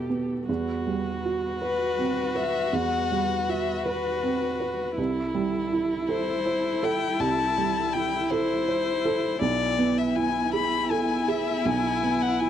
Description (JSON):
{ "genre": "neoclassical piano and strings", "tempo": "54 BPM (dotted quarters)", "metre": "6/8", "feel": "rubato", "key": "E minor", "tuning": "A4 = 440 Hz", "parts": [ { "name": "rich viola", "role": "accompaniment", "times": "0.0-12.5 s", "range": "E4 to G4", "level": "-31 LUFS", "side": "right 2 dB", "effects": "none" }, { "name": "warm upright piano", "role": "accompaniment", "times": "0.0-12.5 s", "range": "B1 to E5", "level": "-27 LUFS", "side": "right 4 dB", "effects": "none" }, { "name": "rich chamber string section", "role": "sustained chords", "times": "0.0-12.5 s", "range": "G3 to G#5", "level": "-35 LUFS", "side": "left 3 dB", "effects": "none" }, { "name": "rich violin", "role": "melody", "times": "1.6-12.5 s", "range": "B4 to B5", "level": "-27 LUFS", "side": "left 8 dB", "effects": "none" } ], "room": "little or no reverb", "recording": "dry, close 1970s-style studio recording", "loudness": "-23 LUFS", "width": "side -10 dB against mid", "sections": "0.5-12.5 A section", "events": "none", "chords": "0.5 Emadd9; 5.0 C6; 9.4 E/B", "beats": "| 0.48 1.61 | 2.73 3.86 | 4.98 6.09 | 7.20 8.31 | 9.41 10.53 | 11.65" }